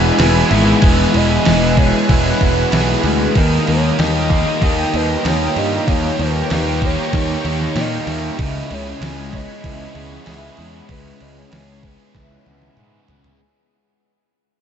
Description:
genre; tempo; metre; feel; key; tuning
rock, shoegaze and dream pop; 96 BPM; 4/4; straight; unclear; A4 = 440 Hz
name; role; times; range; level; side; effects
hollow clarinet-like synth lead; melody; 0.0-13.1 s; A#4 to G5; -25 LUFS; equal; chorus, analog delay
chorused pulse-width pad; sustained chords; 0.0-13.4 s; E4 to F#6; -25 LUFS; equal; none
biting overdriven guitar; riff; 0.0-13.4 s; E2 to G#4; -22 LUFS; right 8 dB; reverse reverb
biting overdriven guitar; riff; 0.0-13.4 s; C#3 to E4; -25 LUFS; equal; phaser
overdriven semi-hollow guitar; riff; 0.0-13.4 s; C#3 to E4; -22 LUFS; left 8 dB; wide subtle chorus
fuzz picked electric bass; bass; 0.0-13.3 s; E1 to A#2; -20 LUFS; equal; overdrive
detuned 8-bit digital drum machine; drums; 0.2-13.4 s; crash cymbal, kick drum, snare drum, toms; -20 LUFS; equal; none
picked twelve-string acoustic guitar; arpeggios; 3.4-13.4 s; E3 to D#4; -34 LUFS; right 3 dB; none
room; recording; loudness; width
moderate huge ambient reverb, RT60 4.8 s; dreamy mix soaked in reverb, nothing above 8.0 kHz; -13 LUFS; side -8 dB against mid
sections
0.0-13.4 A section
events
fade-out 0.0-13.4; drum fill 12.1-13.4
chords
0.0 E; 3.4 D#; 8.4 C#m7

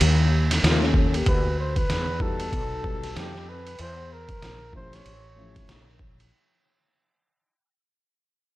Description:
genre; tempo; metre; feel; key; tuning
hip hop, jazz-hop; 95 BPM; 4/4; swing 59% on 16ths; unclear; A4 = 442 Hz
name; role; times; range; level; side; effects
woody fretless electric bass; bass; 0.0-6.3 s; A1 to F2; -24 LUFS; equal; ensemble chorus
trip hop sampler-style drum kit; drums; 0.0-6.3 s; hi-hat, kick drum, ride cymbal, snare drum; -25 LUFS; equal; overdrive
dark concert grand piano; accompaniment; 0.6-5.8 s; F3 to A4; -32 LUFS; left 2 dB; none
trumpet with bucket mute; melody; 1.3-6.0 s; G4 to C#5; -35 LUFS; equal; none
room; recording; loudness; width
light reverb; none; -21 LUFS; side -17 dB against mid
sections
0.0-6.3 A section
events
fade-out 0.0-6.3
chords
0.0 Eb7(b5, no3); 1.3 Dsus2; 2.5 B7b13; 3.8 Edim; 5.1 A7b13

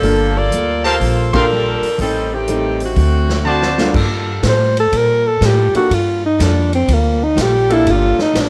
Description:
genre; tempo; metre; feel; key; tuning
jazz, big band swing; 122 BPM; 4/4; swing 67% on 8ths; G minor; A4 = 440 Hz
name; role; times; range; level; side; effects
bright saxophone section; melody; 0.0-3.8 s; D3 to D5; -20 LUFS; equal; cassette tape
picked steel-string acoustic guitar; accompaniment; 0.0-8.5 s; A2 to A4; -28 LUFS; equal; none
warm baby grand piano; accompaniment; 0.0-8.2 s; G2 to A4; -22 LUFS; equal; none
upright bass; bass; 0.0-8.5 s; G1 to Bb2; -20 LUFS; equal; none
swinging big-band drum kit; drums; 0.0-8.5 s; crash cymbal, hi-hat, kick drum, ride cymbal, snare drum; -26 LUFS; equal; none
bright trumpet section; stabs; 0.8-3.9 s; F#4 to C6; -21 LUFS; equal; none
edgy saxophone section; sustained chords; 4.0-4.7, 7.7-8.3 s; G3 to A4; -29 LUFS; equal; none
breathy alto saxophone; melody; 4.5-8.5 s; Bb3 to C5; -17 LUFS; equal; cassette tape
room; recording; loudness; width
light reverb, small room ambience; home recording on cassette; -15 LUFS; mono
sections
0.0-3.9 A section; 3.9-8.5 B section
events
band accent 1.3; drum fill 3.5-3.9; alto saxophone solo 3.9-8.5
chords
0.0 Gm9; 2.0 Am7b5; 3.0 D7; 3.9 Gm9

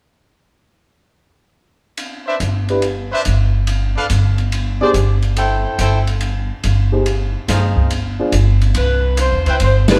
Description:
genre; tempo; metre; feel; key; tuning
jazz, big band swing; 142 BPM; 4/4; swing 67% on 8ths; C major; A4 = 439 Hz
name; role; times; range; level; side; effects
open jazz drum kit; drums; 2.0-9.9 s; hi-hat, kick drum, ride cymbal, snare drum; -26 LUFS; equal; none
clear trumpet section; stabs; 2.3-9.6 s; D4 to G5; -23 LUFS; equal; none
upright bass; bass; 2.4-10.0 s; G1 to E2; -18 LUFS; equal; none
warm upright piano; accompaniment; 2.7-10.0 s; D4 to C5; -21 LUFS; equal; none
warm saxophone section; melody; 8.8-10.0 s; B4 to C5; -21 LUFS; equal; none
room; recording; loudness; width
moderate stone room reverb, RT60 1.2 s; band playing live in one room; -16 LUFS; mono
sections
2.0-8.8 A section; 8.8-10.0 B section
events
band accent 9.8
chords
2.0 Cmaj9 (rootless); 3.7 N.C.; 4.5 Abmaj7#11/G; 5.4 Am7; 7.1 Fm7; 7.9 G7sus4; 8.8 Cmaj7

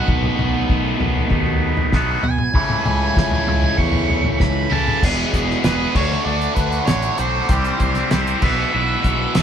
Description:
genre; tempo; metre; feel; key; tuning
indie rock; 97 BPM; 4/4; straight; unclear; A4 = 440 Hz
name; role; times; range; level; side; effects
octave-fuzz lead guitar; melody; 0.0-9.4 s; B4 to C#6; -24 LUFS; right 4 dB; distortion
biting overdriven guitar; riff; 0.0-9.4 s; E2 to G#4; -20 LUFS; equal; phaser
fuzz fingered electric bass; bass; 0.0-9.4 s; E1 to C#3; -23 LUFS; equal; overdrive
cloth-damped thuddy drum kit; drums; 0.1-9.4 s; crash cymbal, hi-hat, kick drum, snare drum, toms; -20 LUFS; equal; none
room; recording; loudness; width
moderate studio reverb, RT60 0.7 s; band playing live in one room; -16 LUFS; side -8 dB against mid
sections
0.0-5.0 A section; 5.0-9.4 B section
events
lead electric guitar solo 0.0-5.0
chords
0.0 B7; 2.5 A/C#; 5.0 E; 5.9 D; 7.5 C; 8.4 Bsus4

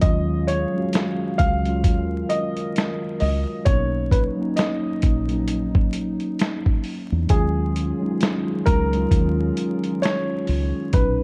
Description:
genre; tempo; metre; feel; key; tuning
lo-fi hip hop; 66 BPM; 4/4; swing 60% on 16ths; Eb minor; A4 = 440 Hz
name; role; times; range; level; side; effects
warm upright piano; melody; 0.0-11.2 s; Ab4 to F5; -30 LUFS; equal; low-pass filter
mellow tine electric piano; accompaniment; 0.0-11.2 s; A#2 to Gb4; -28 LUFS; equal; cassette tape, low-pass filter
dark analog pad; sustained chords; 0.0-11.2 s; Eb3 to F5; -35 LUFS; equal; chorus, low-pass filter
deep dub fingered electric bass; bass; 0.0-11.2 s; A#1 to Fb2; -26 LUFS; equal; none
dusty soul sampler-style drum kit; drums; 0.0-11.2 s; hi-hat, kick drum, snare drum; -23 LUFS; equal; none
room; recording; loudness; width
light reverb, digital ambience; vinyl crackle; -22 LUFS; mono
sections
0.0-11.2 A section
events
none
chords
0.0 Ebm11; 3.7 Bmaj7; 7.3 Ebm11

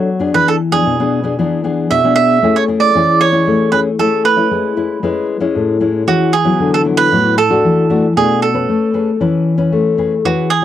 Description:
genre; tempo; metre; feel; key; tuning
samba; 115 BPM; 4/4; straight; A major; A4 = 440 Hz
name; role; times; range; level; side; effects
cavaquinho; melody; 0.0-10.6 s; F#4 to E5; -14 LUFS; right 6 dB; cassette tape
nylon-string guitar; accompaniment; 0.0-10.6 s; A2 to B4; -14 LUFS; left 3 dB; none
room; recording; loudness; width
wet booth ambience, RT60 0.2 s; home recording on cassette; -11 LUFS; side -11 dB against mid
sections
0.0-10.6 A section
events
none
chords
0.3 E7; 2.4 Amaj7; 3.5 Amaj9; 4.5 C#m7/G#; 5.6 Amaj7; 6.6 D69; 7.6 E9sus4; 8.7 Amaj9

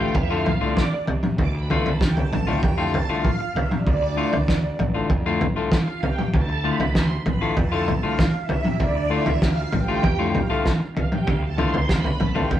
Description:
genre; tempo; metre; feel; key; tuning
psychedelic rock; 97 BPM; 4/4; straight; D dorian; A4 = 440 Hz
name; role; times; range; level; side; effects
string machine, full ensemble; sustained chords; 0.0-12.6 s; D5 to D6; -29 LUFS; right 4 dB; ensemble chorus
semi-hollow electric guitar; riff; 0.0-12.5 s; A2 to F4; -24 LUFS; left 4 dB; none
fuzz fingered electric bass; bass; 0.0-12.6 s; A1 to C3; -28 LUFS; equal; overdrive
cloth-damped thuddy drum kit; drums; 0.1-12.6 s; kick drum, snare drum, toms; -22 LUFS; equal; none
room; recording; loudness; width
light reverb; band playing live in one room; -19 LUFS; side -11 dB against mid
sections
0.0-12.6 A section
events
string machine solo 0.0-12.6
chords
0.0 Dm

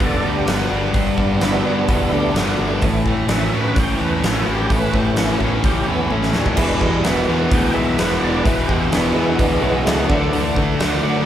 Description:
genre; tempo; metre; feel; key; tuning
classic rock; 128 BPM; 4/4; straight; unclear; A4 = 441 Hz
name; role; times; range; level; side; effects
tonewheel organ; sustained chords; 0.0-11.2 s; E3 to G5; -23 LUFS; right 1 dB; slow rotary speaker, overdrive, chorus vibrato
biting overdriven guitar; riff; 0.0-11.3 s; G2 to F#4; -24 LUFS; right 5 dB; spring reverb
crunchy overdriven guitar; riff; 0.0-11.3 s; G2 to D4; -22 LUFS; left 5 dB; none
fuzz fingered electric bass; bass; 0.0-11.2 s; E1 to D3; -24 LUFS; right 1 dB; overdrive
huge arena drum kit; drums; 0.0-10.9 s; crash cymbal, hi-hat, kick drum, snare drum, toms; -21 LUFS; equal; none
tack piano; accompaniment; 6.6-10.8 s; D4 to C#5; -30 LUFS; right 1 dB; none
distorted electric guitar; riff; 6.6-11.3 s; E2 to D4; -24 LUFS; right 1 dB; distortion
room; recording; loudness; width
moderate large studio reverb, RT60 1.1 s; band playing live in one room; -15 LUFS; side -10 dB against mid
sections
0.0-11.3 A section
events
tonewheel organ solo 0.0-11.3; drum fill 6.1-6.6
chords
0.0 G; 2.8 A; 6.6 E; 10.1 D

